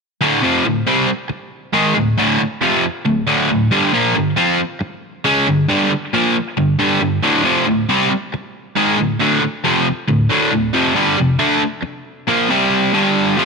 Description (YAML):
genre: rock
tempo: 137 BPM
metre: 4/4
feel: straight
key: D minor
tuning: A4 = 440 Hz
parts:
  - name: cranked stack guitar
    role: riff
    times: 0.2-13.4 s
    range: D2 to F4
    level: -14 LUFS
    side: equal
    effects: overdrive
room: moderate plate reverb, RT60 2.6 s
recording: none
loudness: -14 LUFS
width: side -4 dB against mid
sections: 0.2-13.4 A section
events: none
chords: 0.2 Dm; 3.7 G5; 7.2 Dm; 10.7 F5; 12.5 C5; 12.9 G5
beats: | 0.22 0.66 1.09 1.53 | 1.97 2.41 2.84 3.28 | 3.72 4.16 4.60 5.03 | 5.47 5.91 6.35 6.79 | 7.23 7.67 8.11 8.54 | 8.98 9.42 9.86 10.30 | 10.74 11.18 11.62 12.06 | 12.50 12.94 13.38